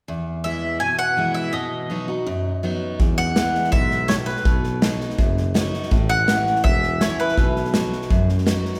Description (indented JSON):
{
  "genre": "honky-tonk and classic country",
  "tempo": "165 BPM",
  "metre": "4/4",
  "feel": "straight",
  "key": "E major",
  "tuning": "A4 = 440 Hz",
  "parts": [
    { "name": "picked steel-string acoustic guitar", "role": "accompaniment", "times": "0.1-8.8 s", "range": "E2 to F#4", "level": "-27 LUFS", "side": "equal", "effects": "none" },
    { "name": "mandolin", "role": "melody", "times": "0.4-7.7 s", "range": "B4 to G#5", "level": "-25 LUFS", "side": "equal", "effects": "none" },
    { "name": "dark tuba", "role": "bass", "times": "3.0-8.7 s", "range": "E1 to F#2", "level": "-28 LUFS", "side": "equal", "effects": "none" },
    { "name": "natural country drum kit", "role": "drums", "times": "3.0-8.8 s", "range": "hi-hat, kick drum, snare drum", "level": "-23 LUFS", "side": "equal", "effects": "none" }
  ],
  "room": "wet scoring stage reverb, RT60 2.0 s",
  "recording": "recorded in a church or concert hall",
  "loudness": "-21 LUFS",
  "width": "mono",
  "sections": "0.1-3.0 A section; 3.0-8.8 B section",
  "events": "none",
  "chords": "0.1 E; 1.5 B; 3.0 E; 4.5 B; 5.9 A; 7.4 B",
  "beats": "| 0.08 0.45 0.81 1.18 | 1.54 1.91 2.27 2.64 | 3.00 3.37 3.73 4.09 | 4.46 4.82 5.19 5.55 | 5.92 6.28 6.65 7.01 | 7.38 7.74 8.11 8.47"
}